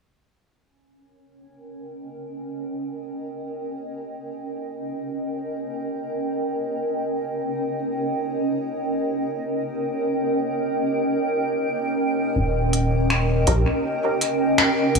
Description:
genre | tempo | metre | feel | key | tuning
ambient dub | free time | none | none | Eb mixolydian | A4 = 440 Hz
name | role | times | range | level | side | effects
granular cloud pad | sustained chords | 1.6-15.0 s | Db4 to G5 | -24 LUFS | right 1 dB | built-in reverb
round analog bass | bass | 12.4-15.0 s | Eb1 to Bb1 | -21 LUFS | equal | none
organic electronic drum kit | drums | 12.7-15.0 s | finger snaps, hi-hat | -23 LUFS | equal | dub echo
filtered dub chord stab | stabs | 13.5-13.6 s | Db4 to Bb4 | -28 LUFS | left 1 dB | phaser, wide subtle chorus, dub echo
room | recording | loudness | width
moderate concert hall reverb, RT60 2.2 s | small room ambience | -22 LUFS | side -4 dB against mid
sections
0.5-15.0 A section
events
fade-in on ambient pad 0.5-15.0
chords
0.5 Eb7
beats
free time

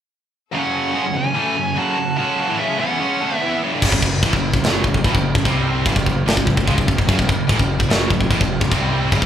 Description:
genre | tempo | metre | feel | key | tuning
heavy metal | 147 BPM | 4/4 | straight | F# minor | A4 = 440 Hz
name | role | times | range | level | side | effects
bright studio string section | sustained chords | 0.5-3.8 s | F#3 to A4 | -33 LUFS | left 2 dB | none
high-gain distorted guitar | riff | 0.5-9.3 s | F#2 to E4 | -23 LUFS | right 6 dB | distortion
tight distorted guitar | riff | 0.5-9.3 s | F#2 to E4 | -23 LUFS | left 5 dB | distortion
high-gain lead guitar | melody | 0.6-3.6 s | E5 to A5 | -23 LUFS | equal | distortion
high-gain lead guitar | second line | 0.6-3.6 s | C#4 to F#4 | -27 LUFS | right 3 dB | distortion
fuzz picked electric bass | bass | 3.8-9.3 s | F#1 to C#2 | -23 LUFS | equal | overdrive
tight metal drum kit | drums | 3.8-9.3 s | china cymbal, crash cymbal, kick drum, snare drum | -18 LUFS | equal | none
room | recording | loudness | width
moderate large studio reverb, RT60 1.2 s | band playing live in one room | -16 LUFS | side -10 dB against mid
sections
0.5-3.8 A section; 3.8-9.3 B section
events
none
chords
0.5 F#m; 5.5 C5; 5.9 F#m; 8.7 C5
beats
| 0.54 0.95 1.36 1.77 | 2.18 2.59 3.00 3.41 | 3.82 4.23 4.64 5.05 | 5.45 5.86 6.27 6.68 | 7.08 7.49 7.90 8.30 | 8.71 9.12

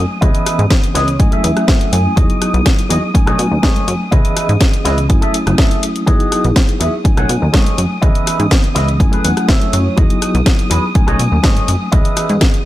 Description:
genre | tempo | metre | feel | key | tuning
filtered disco house | 123 BPM | 4/4 | straight | F# dorian | A4 = 438 Hz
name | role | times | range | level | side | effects
mellow reed electric piano | accompaniment | 0.0-12.7 s | E3 to G#5 | -20 LUFS | equal | fast tremolo, phaser, sidechain pumping, low-pass filter
phased string machine | sustained chords | 0.0-12.7 s | D#6 | -28 LUFS | equal | ensemble chorus, phaser, sidechain pumping, low-pass filter
plucky analog bass | bass | 0.0-12.4 s | F#1 to B2 | -16 LUFS | equal | sidechain pumping, low-pass filter
tambourine | percussion | 0.1-12.5 s | none | barely audible | none | none
electric guitar with an envelope filter | riff | 0.2-12.3 s | E4 to G#5 | -21 LUFS | equal | sidechain pumping, low-pass filter
electronic kick drum | drums | 0.2-12.5 s | none | -13 LUFS | equal | none
house drum kit | drums | 0.2-12.6 s | hi-hat, rim click, snare drum | -20 LUFS | left 1 dB | sidechain pumping on hats
room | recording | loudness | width
digital ambience | none | -11 LUFS | side -14 dB against mid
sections
0.0-12.7 A section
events
clean electric guitar fill 0.7-2.2, 9.0-10.0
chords
0.2 C#m9; 1.2 F#m9; 2.2 Emaj9; 3.1 B13; 4.1 C#m9; 5.1 F#m9; 6.1 Emaj9; 7.1 B13; 8.0 C#m9; 9.0 F#m9; 10.0 Emaj9; 11.0 B13; 11.9 C#m9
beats
| 0.22 0.71 1.20 1.69 | 2.17 2.66 3.15 3.64 | 4.12 4.61 5.10 5.59 | 6.08 6.56 7.05 7.54 | 8.03 8.52 9.00 9.49 | 9.98 10.47 10.95 11.44 | 11.93 12.42

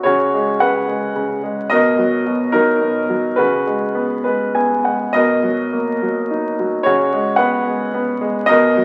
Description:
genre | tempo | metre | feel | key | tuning
classical, lyrical solo piano | 97-112 BPM | 3/4 | rubato | unclear | A4 = 440 Hz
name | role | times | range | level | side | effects
clear grand piano | solo | 0.0-8.8 s | B2 to G#5 | -17 LUFS | equal | none
room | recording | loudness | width
moderate recital hall reverb, RT60 1.5 s | very old 78 rpm record, vinyl crackle | -17 LUFS | mono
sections
0.0-8.8 A section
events
grand piano fill 4.0-5.1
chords
0.0 C#7sus4; 1.7 Bmaj7; 3.4 C#7sus4; 5.1 Bmaj7; 6.9 C#7sus4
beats
| 0.04 0.61 1.16 | 1.71 2.26 2.81 | 3.38 3.95 4.55 | 5.15 5.73 6.30 | 6.86 7.40 7.94 | 8.49

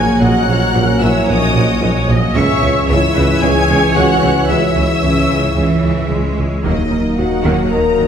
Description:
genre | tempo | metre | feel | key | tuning
cinematic, hybrid orchestral and electronic film score | 112 BPM | 4/4 | straight | unclear | A4 = 440 Hz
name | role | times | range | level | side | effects
rich studio violin section | melody | 0.0-8.1 s | Eb5 to Ab6 | -22 LUFS | left 3 dB | none
rich symphonic violin section | second line | 0.0-8.1 s | Db5 to Bb5 | -22 LUFS | right 1 dB | none
clear symphonic viola section | accompaniment | 0.0-8.1 s | Eb3 to Fb5 | -22 LUFS | equal | none
analog string pad | sustained chords | 0.0-8.1 s | Gb3 to Gb5 | -24 LUFS | equal | ensemble chorus
dark French horn section | sustained chords | 0.0-8.1 s | Db4 to Bb4 | -21 LUFS | left 4 dB | none
dark trombone section | sustained chords | 0.0-8.1 s | Fb3 to Db4 | -20 LUFS | right 2 dB | none
harp-like synth pluck | arpeggios | 0.0-8.1 s | Db3 to Gb4 | -24 LUFS | left 3 dB | none
clear symphonic double bass section | bass | 0.0-8.1 s | Bb1 to Eb2 | -20 LUFS | right 2 dB | none
sub bass with octave | bass | 0.0-8.1 s | Eb1 to Db2 | -23 LUFS | equal | none
warm tuba | bass | 0.0-8.1 s | Bb1 to Eb2 | -21 LUFS | right 1 dB | none
rich symphonic cello section | bass | 0.2-8.1 s | Bb2 to Ab3 | -21 LUFS | right 2 dB | none
room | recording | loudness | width
wet recital hall reverb, RT60 1.5 s | heard from further back in the room | -11 LUFS | side -8 dB against mid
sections
0.0-6.6 A section; 6.6-8.1 B section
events
none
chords
0.0 Gb/Bb; 2.4 Dbm; 6.6 Ebm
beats
| 0.21 0.75 1.28 1.82 | 2.35 2.89 3.42 3.96 | 4.50 5.03 5.57 6.10 | 6.64 7.17 7.71

